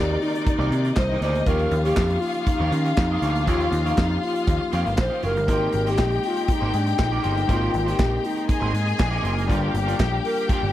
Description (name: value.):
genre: disco.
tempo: 120 BPM.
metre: 4/4.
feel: straight.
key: unclear.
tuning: A4 = 440 Hz.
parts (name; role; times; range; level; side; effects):
mellow hollow alto flute; melody; 0.0-10.7 s; Db4 to C5; -26 LUFS; equal; none.
rich studio string section; second line; 0.0-10.7 s; Eb4 to Ab5; -28 LUFS; left 5 dB; none.
overdriven tine electric piano; accompaniment; 0.0-10.7 s; Eb3 to Bb4; -31 LUFS; left 5 dB; none.
bright tonewheel organ; sustained chords; 0.0-10.7 s; Ab3 to Eb6; -35 LUFS; right 1 dB; overdrive, chorus vibrato, fast rotary speaker.
overdriven picked electric bass; bass; 0.0-10.7 s; F#1 to Eb3; -24 LUFS; equal; none.
electric guitar at the edge of break-up; accompaniment; 0.1-10.7 s; G3 to Eb5; -32 LUFS; right 9 dB; lush chorus.
modern studio drum kit; drums; 0.2-10.6 s; handclaps, hi-hat, kick drum, snare drum; -25 LUFS; right 1 dB; none.
room: little or no reverb.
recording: none.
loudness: -20 LUFS.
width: side -13 dB against mid.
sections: 0.0-10.7 A section.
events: none.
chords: 0.0 Cm9; 1.5 Eb9; 5.5 Abmaj9; 9.5 Gm7.